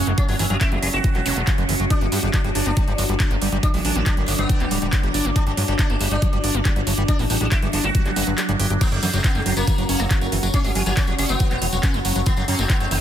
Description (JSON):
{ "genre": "psychedelic trance", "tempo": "139 BPM", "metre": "4/4", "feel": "straight", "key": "unclear", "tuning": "A4 = 441 Hz", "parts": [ { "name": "sitar", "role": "melody", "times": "0.0-13.0 s", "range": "C#3 to F#4", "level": "-28 LUFS", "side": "left 1 dB", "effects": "phaser, sidechain pumping, digital delay" }, { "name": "overtone-sweeping drone", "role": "sustained chords", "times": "0.0-13.0 s", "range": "F#3", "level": "-30 LUFS", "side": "right 1 dB", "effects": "chorus, built-in reverb, phaser, sidechain pumping" }, { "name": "liquid acid bass", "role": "riff", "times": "0.0-13.0 s", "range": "E3 to G4", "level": "-27 LUFS", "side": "right 1 dB", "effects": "chorus, auto-pan, sidechain pumping, digital delay" }, { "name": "fat analog bass", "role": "bass", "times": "0.0-13.0 s", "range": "D1 to G2", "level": "-24 LUFS", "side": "equal", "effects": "none" }, { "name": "warbly tape-like pad", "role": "texture", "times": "0.0-13.0 s", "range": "C#4 to D6", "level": "-30 LUFS", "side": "left 1 dB", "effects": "chorus, built-in reverb, sidechain pumping" }, { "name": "drum and bass drum kit", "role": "drums", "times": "0.1-13.0 s", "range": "crash cymbal, handclaps, hi-hat", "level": "-26 LUFS", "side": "right 1 dB", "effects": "overdrive" }, { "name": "electronic kick drum", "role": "drums", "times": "0.2-12.8 s", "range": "none", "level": "-20 LUFS", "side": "equal", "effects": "overdrive" }, { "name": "zap", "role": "sound effects", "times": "1.3-1.4 s", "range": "none", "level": "-32 LUFS", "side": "left 1 dB", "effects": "none" }, { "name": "metallic wobble bass", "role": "second line", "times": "8.8-10.2 s", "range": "F#3 to A#3", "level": "-37 LUFS", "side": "right 4 dB", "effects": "none" }, { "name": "tambourine", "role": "percussion", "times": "8.8-12.9 s", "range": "none", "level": "-32 LUFS", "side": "left 3 dB", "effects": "none" } ], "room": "little or no reverb", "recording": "dense, heavily limited modern master", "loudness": "-18 LUFS", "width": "side -10 dB against mid", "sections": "0.0-13.0 A section", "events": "kick drops out 8.4-8.8", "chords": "0.0 F#5; 1.9 G5; 8.8 F#5" }